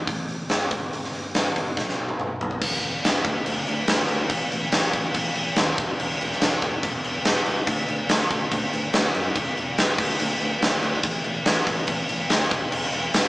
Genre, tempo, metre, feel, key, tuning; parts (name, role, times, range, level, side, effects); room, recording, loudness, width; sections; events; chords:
classic rock; 142 BPM; 4/4; straight; A4 = 440 Hz
modern bright fingered electric bass; bass; 0.0-13.3 s; E1 to F#2; -32 LUFS; equal
huge arena drum kit; drums; 0.1-13.2 s; crash cymbal, hi-hat, kick drum, snare drum, toms; -21 LUFS; equal
light reverb; band playing live in one room, small speaker sound; -21 LUFS; side -21 dB against mid
0.0-2.6 A section; 2.6-13.3 B section
drum fill 1.8-2.6